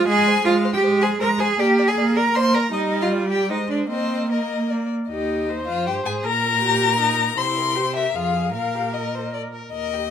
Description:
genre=quick classical-period movement for string quartet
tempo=156 BPM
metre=3/4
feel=rubato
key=Eb major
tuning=A4 = 440 Hz
part: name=warm violin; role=melody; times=0.0-10.1 s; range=C5 to C6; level=-24 LUFS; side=left 9 dB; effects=none
part: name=clear violin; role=second line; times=0.0-10.1 s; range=Eb4 to C6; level=-27 LUFS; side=left 3 dB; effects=none
part: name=rich viola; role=accompaniment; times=0.0-9.5 s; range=G3 to C5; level=-24 LUFS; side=right 2 dB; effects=none
part: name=clear cello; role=bass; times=0.0-10.1 s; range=Eb2 to C5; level=-23 LUFS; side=right 3 dB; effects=none
room=light reverb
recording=none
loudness=-18 LUFS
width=side -8 dB against mid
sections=0.0-5.1 A section; 5.1-10.1 B section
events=none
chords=0.5 Fm/Ab; 1.6 Bb; 2.7 Eb/G; 3.5 Ab; 3.9 Bbsus4; 4.7 Bb; 5.1 Eb; 6.2 Eb/Bb; 7.4 C7; 8.2 Fm; 8.6 Eb/Bb

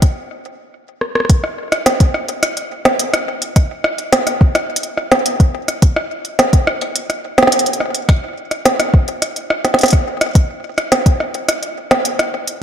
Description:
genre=IDM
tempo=106 BPM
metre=4/4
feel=straight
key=none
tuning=none
part: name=electronic kick drum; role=drums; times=0.0-11.2 s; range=none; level=-10 LUFS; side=equal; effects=studio ambience
part: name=organic electronic drum kit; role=drums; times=0.0-12.6 s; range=hi-hat, rim click, snare drum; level=-15 LUFS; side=equal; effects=studio ambience, ping-pong delay
room=moderate lush hall reverb, RT60 2.0 s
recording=dreamy mix soaked in reverb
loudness=-13 LUFS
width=side -9 dB against mid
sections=0.0-1.3 A section; 1.3-12.6 B section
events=stop 0.2-1.3; drum fill 1.0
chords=none

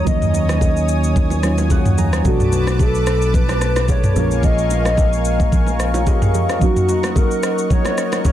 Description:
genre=amapiano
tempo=110 BPM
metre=4/4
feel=swing 55% on 16ths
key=Eb minor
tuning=A4 = 441 Hz
part: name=hollow clarinet-like synth lead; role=melody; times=0.0-8.3 s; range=F#4 to Eb5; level=-22 LUFS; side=equal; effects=chorus, ping-pong delay
part: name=soft electric-piano-like synth keys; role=accompaniment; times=0.0-8.3 s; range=Gb3 to Bb5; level=-23 LUFS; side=equal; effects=chorus, phaser
part: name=lush unison pad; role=sustained chords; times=0.0-8.3 s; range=Bb4 to Eb6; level=-26 LUFS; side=equal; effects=chorus
part: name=fingered electric bass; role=bass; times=0.0-6.3 s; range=Bb1 to Eb2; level=-19 LUFS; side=equal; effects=none
part: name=smooth R&B drum kit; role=drums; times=0.1-8.3 s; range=kick drum, rim click, shaker, toms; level=-18 LUFS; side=equal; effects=vintage 12-bit sampler grit
part: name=congas and bongos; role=percussion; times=0.1-8.3 s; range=none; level=-28 LUFS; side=right 8 dB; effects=none
room=light reverb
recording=dense, heavily limited modern master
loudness=-14 LUFS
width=side -12 dB against mid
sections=0.0-8.3 A section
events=synth keys fill 1.4-2.3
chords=0.0 Ebm7; 2.3 Bm7; 4.2 Bbm7; 6.6 Ebm7

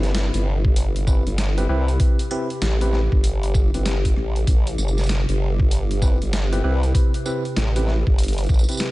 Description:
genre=glitch hop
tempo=97 BPM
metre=4/4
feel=swing 63% on 16ths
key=A minor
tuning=A4 = 440 Hz
part: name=warbly tape-like pad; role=sustained chords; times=0.1-8.9 s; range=C3 to B4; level=-30 LUFS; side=right 1 dB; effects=chorus, built-in reverb, vintage 12-bit sampler grit, sidechain pumping
part: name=tine electric piano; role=stabs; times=0.0-8.9 s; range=C4 to B4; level=-29 LUFS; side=equal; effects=fast stereo tremolo, sidechain pumping, tape echo
part: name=formant-sweep wobble bass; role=bass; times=0.0-8.7 s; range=G1 to C2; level=-21 LUFS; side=equal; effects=chorus
part: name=boom bap sampler-style drum kit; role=drums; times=0.0-8.9 s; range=hi-hat, rim click, snare drum, tambourine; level=-30 LUFS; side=equal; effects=studio reverb
part: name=electronic kick drum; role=drums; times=0.6-8.6 s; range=none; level=-18 LUFS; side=equal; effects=studio reverb
room=digital ambience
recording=nothing above 10.5 kHz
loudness=-18 LUFS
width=side -19 dB against mid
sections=0.0-8.9 A section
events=none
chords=0.0 Am9

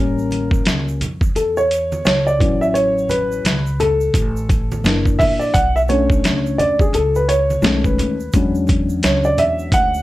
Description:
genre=hip hop, jazz-hop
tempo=86 BPM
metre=4/4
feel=swing 61% on 16ths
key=unclear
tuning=A4 = 440 Hz
part: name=dark baby grand piano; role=accompaniment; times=0.0-10.0 s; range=D#3 to F#5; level=-17 LUFS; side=left 1 dB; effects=plate reverb
part: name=upright bass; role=bass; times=0.0-10.0 s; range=F#1 to E#2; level=-22 LUFS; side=equal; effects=none
part: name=egg shaker and congas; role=percussion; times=0.2-10.0 s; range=none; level=-31 LUFS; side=right 3 dB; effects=none
part: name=boom bap sampler-style drum kit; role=drums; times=0.3-9.9 s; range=hi-hat, kick drum, snare drum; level=-18 LUFS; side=equal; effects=overdrive, vintage 12-bit sampler grit
room=moderate studio reverb, RT60 0.6 s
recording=none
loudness=-14 LUFS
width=side -16 dB against mid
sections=0.0-10.0 A section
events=grand piano solo 0.0-10.0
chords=0.0 A7b9; 2.4 A69; 4.8 F#aug7; 5.5 Bm9; 7.6 B13; 8.3 E13

